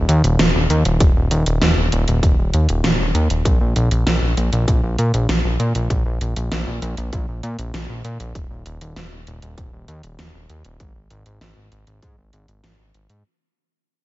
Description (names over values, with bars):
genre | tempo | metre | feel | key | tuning
synthwave | 98 BPM | 4/4 | straight | unclear | A4 = 440 Hz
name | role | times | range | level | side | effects
fat analog bass | bass | 0.0-13.2 s | Eb1 to Bb2 | -19 LUFS | equal | none
pop drum kit | drums | 0.1-13.2 s | hi-hat, snare drum | -22 LUFS | equal | studio ambience, gated reverb
electronic kick drum | drums | 1.0-12.1 s | none | -18 LUFS | equal | studio ambience
room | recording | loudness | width
little or no reverb | nothing above 7.6 kHz | -16 LUFS | side -17 dB against mid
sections
0.0-13.2 A section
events
fade-out 0.0-13.2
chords
none